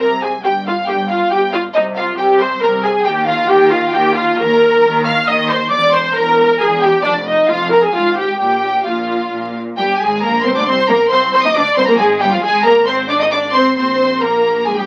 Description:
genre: quick classical-period movement for string orchestra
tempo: 136 BPM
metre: 3/4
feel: straight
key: unclear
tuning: A4 = 440 Hz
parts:
  - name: clear chamber violin section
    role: melody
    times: 0.0-14.9 s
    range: D5 to F6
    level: -21 LUFS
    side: equal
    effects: none
  - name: rich chamber violin section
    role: second line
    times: 0.0-14.9 s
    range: F4 to F6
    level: -20 LUFS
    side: equal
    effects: none
  - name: warm studio viola section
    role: accompaniment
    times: 0.0-14.9 s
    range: D4 to F5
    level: -18 LUFS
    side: equal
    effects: none
  - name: clear chamber double bass section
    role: bass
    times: 0.0-14.9 s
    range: E1 to Eb2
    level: -29 LUFS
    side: equal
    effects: none
  - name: rich studio cello section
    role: bass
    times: 0.0-14.9 s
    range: E2 to Eb4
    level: -25 LUFS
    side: equal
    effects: none
room: moderate studio ambience, RT60 0.5 s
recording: very old 78 rpm record, vinyl crackle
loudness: -14 LUFS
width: mono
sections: 0.0-9.8 A section; 9.8-14.9 B section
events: none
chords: 0.4 Fsus2/G; 1.8 Abmaj13/C; 3.1 Eb5; 5.7 Em7b5; 7.0 Bbadd11/F; 7.9 Fm/Ab; 8.4 Bb5; 9.8 Bb13; 11.1 Fm7/C; 12.4 Ab; 13.8 Bb5

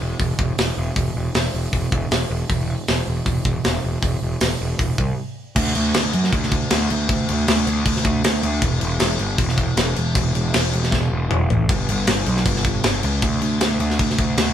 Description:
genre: heavy metal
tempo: 156 BPM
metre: 4/4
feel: straight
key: E minor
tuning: A4 = 440 Hz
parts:
  - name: fuzz picked electric bass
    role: bass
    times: 0.0-14.5 s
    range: E1 to F#2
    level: -21 LUFS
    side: equal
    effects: overdrive
  - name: tight metal drum kit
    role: drums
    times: 0.2-14.5 s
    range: crash cymbal, hi-hat, kick drum, snare drum, toms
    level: -20 LUFS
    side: equal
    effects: none
room: light reverb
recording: band playing live in one room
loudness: -18 LUFS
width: side -10 dB against mid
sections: 0.0-5.6 A section; 5.6-14.5 B section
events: break 5.2-5.6; drum fill 10.9-11.7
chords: none

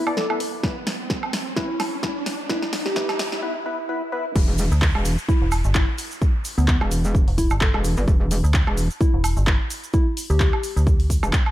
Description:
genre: bass house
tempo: 129 BPM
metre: 4/4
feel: swing 56% on 16ths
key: E minor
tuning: A4 = 439 Hz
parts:
  - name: soft struck synth lead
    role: melody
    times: 0.0-10.9 s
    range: B3 to A4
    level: -28 LUFS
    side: left 1 dB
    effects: chorus, tape echo
  - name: percussive organ stab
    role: stabs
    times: 0.0-4.3 s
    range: B3 to D5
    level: -30 LUFS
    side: left 3 dB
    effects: analog chorus, cassette tape, sidechain pumping, tape echo
  - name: riser, swell and downlifter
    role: sound effects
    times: 0.0-8.1 s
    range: none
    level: -33 LUFS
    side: right 2 dB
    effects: none
  - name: house drum kit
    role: drums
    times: 0.1-11.5 s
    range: crash cymbal, handclaps, hi-hat, snare drum, woodblock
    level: -27 LUFS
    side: right 1 dB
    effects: studio ambience
  - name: electronic kick drum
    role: drums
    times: 0.6-11.4 s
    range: none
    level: -20 LUFS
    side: equal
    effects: studio ambience
  - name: metallic wobble bass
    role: bass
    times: 4.4-11.3 s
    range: E1 to G1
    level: -21 LUFS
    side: equal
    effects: chorus, overdrive, sidechain pumping
  - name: tube shaker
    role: percussion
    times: 4.4-11.4 s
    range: none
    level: -35 LUFS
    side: right 4 dB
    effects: none
  - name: metallic FM bass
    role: bass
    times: 4.7-11.2 s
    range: E1 to D2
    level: -20 LUFS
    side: equal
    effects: overdrive, sidechain pumping
room: light reverb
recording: dark, warm production, high-pass filter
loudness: -19 LUFS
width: side -14 dB against mid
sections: 0.0-4.4 A section; 4.4-11.5 B section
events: build-up 0.0-4.4; drum fill 0.0-3.4; riser 0.0-3.4; break 3.4-4.4; swell 3.4-4.4; drop 4.4-11.5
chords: 0.0 E5; 4.4 E7(no3)

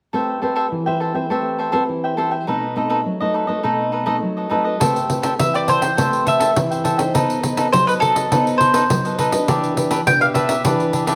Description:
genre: samba and choro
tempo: 103 BPM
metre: 4/4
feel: straight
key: A minor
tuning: A4 = 440 Hz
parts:
  - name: cavaquinho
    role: accompaniment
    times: 0.1-11.2 s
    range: D4 to G5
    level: -23 LUFS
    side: equal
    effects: none
  - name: nylon-string guitar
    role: accompaniment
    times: 0.1-11.2 s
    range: B2 to C5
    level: -25 LUFS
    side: equal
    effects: none
  - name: pandeiro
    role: percussion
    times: 4.8-11.2 s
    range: none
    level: -24 LUFS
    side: equal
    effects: none
  - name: mandolin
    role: melody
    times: 5.4-10.6 s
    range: A4 to G5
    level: -20 LUFS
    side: equal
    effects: none
room: moderate large studio reverb, RT60 1.1 s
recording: none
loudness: -19 LUFS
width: mono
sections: 0.1-4.8 A section; 4.8-11.2 B section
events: none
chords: 0.1 Am9; 2.5 B7b9; 4.8 Am9; 7.1 B7b9; 9.5 Em7

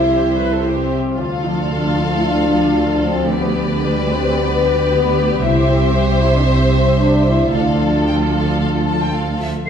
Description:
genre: cinematic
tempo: 113 BPM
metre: 4/4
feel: straight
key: D dorian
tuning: A4 = 444 Hz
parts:
  - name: warm symphonic violin section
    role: melody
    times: 0.0-9.5 s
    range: D5 to A5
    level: -26 LUFS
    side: left 3 dB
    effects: none
  - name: warm symphonic violin section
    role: second line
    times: 0.0-9.4 s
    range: A4 to C5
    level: -22 LUFS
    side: left 2 dB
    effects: none
  - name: warm studio viola section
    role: accompaniment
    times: 0.0-9.4 s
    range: F4 to B4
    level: -25 LUFS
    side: right 2 dB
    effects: none
  - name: warm French horn section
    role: sustained chords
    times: 0.0-9.7 s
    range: G3 to F4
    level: -19 LUFS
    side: left 2 dB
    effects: none
  - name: concert harp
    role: arpeggios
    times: 0.0-9.7 s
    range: C3 to C5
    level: -26 LUFS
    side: left 6 dB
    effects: none
  - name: dark symphonic cello section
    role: bass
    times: 0.0-9.4 s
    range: C2 to D2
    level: -21 LUFS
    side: right 3 dB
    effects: none
  - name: rich symphonic double bass section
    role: bass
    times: 0.0-9.4 s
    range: C2 to D2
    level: -21 LUFS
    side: right 3 dB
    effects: none
room: wet recital hall reverb, RT60 1.6 s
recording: recorded in a church or concert hall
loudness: -14 LUFS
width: side -8 dB against mid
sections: 0.0-9.7 A section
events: none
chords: 0.0 C; 1.2 Dm; 3.3 G/D; 5.4 C; 7.5 Dm

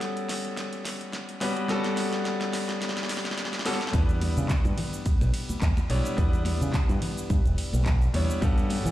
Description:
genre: nu-disco, nu disco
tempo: 107 BPM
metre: 4/4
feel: swing 55% on 16ths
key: E dorian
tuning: A4 = 440 Hz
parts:
  - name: bright grand piano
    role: accompaniment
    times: 0.0-8.9 s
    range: G3 to C#5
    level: -30 LUFS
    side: left 1 dB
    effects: sidechain pumping, tape echo
  - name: pop drum kit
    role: drums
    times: 0.0-8.9 s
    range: handclaps, hi-hat, ride cymbal, shaker, snare drum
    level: -34 LUFS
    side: equal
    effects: high-pass filter on hats, small room ambience, high-pass filter on snare, high-pass filter on cymbals, high-pass filter on perc
  - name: fingered electric bass with an envelope filter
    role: bass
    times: 3.9-8.9 s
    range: E1 to E3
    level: -26 LUFS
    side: equal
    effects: none
  - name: electronic kick drum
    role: drums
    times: 3.9-8.5 s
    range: none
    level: -25 LUFS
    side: equal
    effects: small room ambience
  - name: cabasa and congas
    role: percussion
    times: 3.9-8.9 s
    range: none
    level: -37 LUFS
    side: left 1 dB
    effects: none
room: moderate plate reverb, RT60 2.4 s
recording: played on a big sound system in a bare room, large studio reverb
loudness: -24 LUFS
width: side -14 dB against mid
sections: 0.0-3.9 A section; 3.9-8.9 B section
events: build-up 0.0-3.9; drum fill 0.0-3.9; drop 3.9-8.9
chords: 0.0 Gmaj9#11; 3.9 Em7

